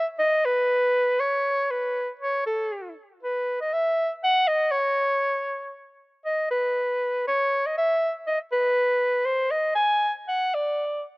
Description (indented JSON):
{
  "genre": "alpine folk",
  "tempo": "118 BPM",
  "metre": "2/4",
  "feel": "rubato",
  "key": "unclear",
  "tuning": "A4 = 440 Hz",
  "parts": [
    { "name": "dark soprano saxophone", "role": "solo", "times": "0.0-11.0 s", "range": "A4 to G#5", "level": "-22 LUFS", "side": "equal", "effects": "slapback echo" }
  ],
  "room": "little or no reverb",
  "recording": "recorded outdoors, with no room sound",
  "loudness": "-22 LUFS",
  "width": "side -29 dB against mid",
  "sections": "0.0-11.2 A section",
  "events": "none",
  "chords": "none",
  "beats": "| 0.17 0.68 | 1.18 1.69 | 2.21 2.72 | 3.22 3.73 | 4.23 4.72 | 5.22 5.73 | 6.25 6.76 | 7.28 7.78 | 8.28 8.77 | 9.27 9.77 | 10.28 10.79"
}